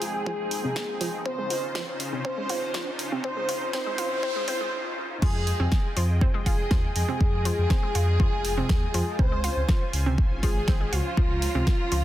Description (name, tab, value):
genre	progressive house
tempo	121 BPM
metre	4/4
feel	straight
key	F minor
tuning	A4 = 439 Hz
part	wide unison lead	melody	0.0-12.0 s	F4 to C5	-31 LUFS	left 1 dB	sidechain pumping, digital delay
part	rich chamber violin section	second line	0.0-12.0 s	F4 to C5	-36 LUFS	right 1 dB	sidechain pumping, low-pass filter, digital delay
part	filtered supersaw swell	sustained chords	0.0-12.0 s	Db3 to Bb5	-36 LUFS	equal	sidechain pumping
part	analog pluck	arpeggios	0.0-12.0 s	C3 to F4	-33 LUFS	right 1 dB	chorus, sidechain pumping, digital delay
part	pop drum kit	drums	0.0-12.0 s	crash cymbal, hi-hat, snare drum	-33 LUFS	equal	high-pass filter on hats, high-pass filter on snare, high-pass filter on cymbals, high-pass filter on room
part	riser and noise sweep	sound effects	0.0-5.2 s	none	-38 LUFS	equal	none
part	electronic kick drum	drums	0.3-11.8 s	none	-24 LUFS	equal	high-pass filter on kick, high-pass filter on room
part	dark detuned saw bass	bass	5.2-12.0 s	F1 to F2	-26 LUFS	equal	tube saturation, sidechain pumping
room	light reverb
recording	dense, heavily limited modern master, high-pass filter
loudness	-23 LUFS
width	side -14 dB against mid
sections	0.0-5.2 A section; 5.2-12.0 B section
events	build-up 0.0-5.2; riser 0.0-4.7; filter sweep on synth arpeggio sound 0.0-5.2; filter sweep on analog synth lead 0.0-5.2; noise sweep 3.2-5.2; break 4.7-5.2; drop 5.2-12.0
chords	0.0 Fm9; 1.3 Dbmaj7; 5.2 Fm9; 9.2 Dbmaj7